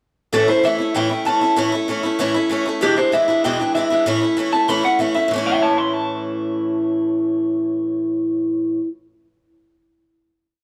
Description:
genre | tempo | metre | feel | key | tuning
rock | 193 BPM | 4/4 | straight | A major | A4 = 440 Hz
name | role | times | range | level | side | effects
electric guitar through a small old amp | melody | 0.3-8.9 s | G4 to C6 | -21 LUFS | equal | subtle chorus, tape echo
picked swing-style acoustic guitar | accompaniment | 0.3-8.9 s | E2 to E4 | -21 LUFS | equal | plate reverb
room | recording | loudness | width
wet studio reverb, RT60 0.8 s | none | -19 LUFS | mono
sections
0.3-5.3 A section; 5.3-7.8 final chord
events
none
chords
0.3 A; 2.8 E7; 4.1 A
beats
| 0.33 0.64 0.95 1.26 | 1.58 1.89 2.20 2.51 | 2.82 3.14 3.45 3.76 | 4.07 4.38 4.69 5.00 | 5.31 5.62 5.93 6.24 | 6.55 6.86 7.17 7.49

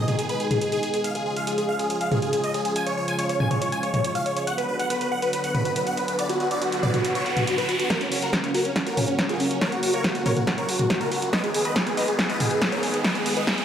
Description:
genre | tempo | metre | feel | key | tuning
uplifting trance | 140 BPM | 4/4 | straight | F# major | A4 = 440 Hz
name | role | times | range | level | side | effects
big supersaw lead | melody | 0.0-13.6 s | C#4 to G#5 | -25 LUFS | equal | phaser, sidechain pumping, tape echo
lush unison pad | sustained chords | 0.0-13.6 s | B2 to B4 | -29 LUFS | equal | chorus, sidechain pumping
punchy analog drum machine | drums | 0.1-13.6 s | hi-hat, snare drum, toms | -26 LUFS | equal | sidechain pumping on hats, sidechain pumping on toms
riser | sound effects | 5.2-13.6 s | none | -32 LUFS | equal | none
electronic kick drum | drums | 7.9-13.6 s | none | -33 LUFS | equal | none
room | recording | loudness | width
moderate digital room reverb, RT60 0.9 s | high-pass filter | -22 LUFS | side -9 dB against mid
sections
0.0-7.9 A section; 7.9-13.6 B section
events
riser 5.2-7.9, 7.9-13.6; build-up 7.9-13.6; drum fill 7.9-13.6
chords
0.0 G#m; 1.0 C#; 4.5 Bm; 7.9 F#; 11.3 G#m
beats
0.19 0.62 | 1.04 1.47 1.90 2.33 | 2.76 3.19 3.62 4.04 | 4.47 4.90 5.33 5.76 | 6.19 6.62 7.04 7.47 | 7.90 8.33 8.76 9.19 | 9.62 10.04 10.47 10.90 | 11.33 11.76 12.19 12.62 | 13.04 13.47

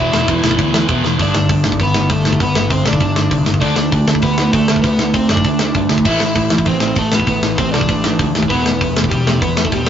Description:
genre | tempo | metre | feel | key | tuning
punk rock | 197 BPM | 4/4 | straight | G major | A4 = 440 Hz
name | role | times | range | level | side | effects
overdriven semi-hollow guitar | melody | 0.0-9.9 s | G3 to E5 | -20 LUFS | left 1 dB | tape echo
sludgy distorted guitar | riff | 0.0-9.9 s | E2 to D4 | -17 LUFS | right 1 dB | overdrive
picked electric bass | bass | 0.0-9.8 s | E1 to G2 | -21 LUFS | equal | none
tight metal drum kit | drums | 0.1-9.9 s | crash cymbal, hi-hat, kick drum, ride cymbal, snare drum | -18 LUFS | equal | none
room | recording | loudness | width
moderate booth ambience, RT60 0.2 s | rough rehearsal-room recording, nothing above 7.5 kHz | -12 LUFS | side -9 dB against mid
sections
0.0-1.2 A section; 1.2-9.9 B section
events
drum fill 1.0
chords
0.0 E5; 1.2 G; 3.6 D5; 6.1 Am; 8.5 Em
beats
0.28 0.58 0.89 | 1.19 1.49 1.79 2.10 | 2.40 2.71 3.01 3.31 | 3.62 3.92 4.22 4.53 | 4.83 5.14 5.44 5.75 | 6.05 6.36 6.66 6.97 | 7.28 7.58 7.89 8.19 | 8.50 8.80 9.11 9.41 | 9.72

